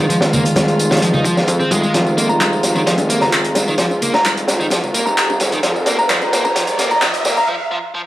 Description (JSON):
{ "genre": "breakbeat, breaks", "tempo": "130 BPM", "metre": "4/4", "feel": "straight", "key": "F minor", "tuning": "A4 = 439 Hz", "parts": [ { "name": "dark chamber string section", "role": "sustained chords", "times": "0.0-7.4 s", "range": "Eb3 to F4", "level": "-20 LUFS", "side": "equal", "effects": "sidechain pumping" }, { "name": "biting overdriven guitar", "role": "riff", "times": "0.0-8.0 s", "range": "Eb3 to Eb4", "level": "-21 LUFS", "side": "equal", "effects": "tube saturation, vintage 12-bit sampler grit, low-pass filter, analog delay" }, { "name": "fat analog bass", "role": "bass", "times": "0.0-7.4 s", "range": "F1 to F2", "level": "-23 LUFS", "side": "equal", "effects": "tube saturation, high-pass filter" }, { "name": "crunchy breakbeat drum kit", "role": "drums", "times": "0.1-7.3 s", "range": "hi-hat, kick drum, snare drum", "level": "-19 LUFS", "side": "equal", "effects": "high-pass filter on kick, high-pass filter on hats, high-pass filter on snare, high-pass filter on room" }, { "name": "electronic tambourine and handclaps", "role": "drums", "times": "0.1-7.5 s", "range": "none", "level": "-22 LUFS", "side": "equal", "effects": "overdrive, high-pass filter on perc, high-pass filter on snare" }, { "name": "congas and bongos", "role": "percussion", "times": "0.3-7.5 s", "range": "none", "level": "-25 LUFS", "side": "left 1 dB", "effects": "none" }, { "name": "riser", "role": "sound effects", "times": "3.9-7.5 s", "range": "none", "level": "-25 LUFS", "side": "right 1 dB", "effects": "none" }, { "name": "soft synth bell", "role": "melody", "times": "2.3-7.5 s", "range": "Bb5", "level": "-20 LUFS", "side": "equal", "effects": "chorus, phaser, old record sound, analog delay" } ], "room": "wet studio reverb, RT60 0.6 s", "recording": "dry, gritty hardware recording, vinyl crackle, high-pass filter", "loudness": "-13 LUFS", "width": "side -15 dB against mid", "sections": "0.0-8.1 A section", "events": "build-up 0.0-8.1; filter sweep on overdriven electric guitar 0.0-8.1; drum fill 1.9-7.5; riser 3.9-7.5; break 7.5-8.1", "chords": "0.0 Fm7", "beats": "| 0.10 0.56 1.02 1.49 | 1.95 2.41 2.87 3.33 | 3.79 4.25 4.72 5.18 | 5.64 6.10 6.56 7.02 | 7.49 7.95" }